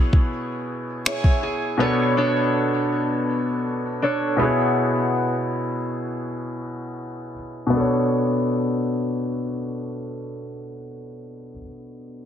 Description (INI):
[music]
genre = contemporary R&B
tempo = free time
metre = none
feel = none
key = B dorian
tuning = A4 = 441 Hz
[part]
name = warm concert grand piano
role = accompaniment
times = 0.0-12.3 s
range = B2 to C#5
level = -23 LUFS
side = left 1 dB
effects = low-pass filter
[part]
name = picked acoustic archtop guitar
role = arpeggios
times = 0.0-5.3 s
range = B3 to C#5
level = -25 LUFS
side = equal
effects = low-pass filter, ping-pong delay
[part]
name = smooth R&B drum kit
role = drums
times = 0.1-1.4 s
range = finger snaps, kick drum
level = -18 LUFS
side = equal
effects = soft clipping on snare
[sound]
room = light reverb, small room ambience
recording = dense, heavily limited modern master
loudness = -20 LUFS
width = side -9 dB against mid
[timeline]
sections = 0.0-7.7 A section; 7.7-10.7 B section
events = filter sweep 0.0-7.7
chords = 0.0 C#m7/B; 1.8 Bm9; 4.4 C#m7/B; 7.7 Bm9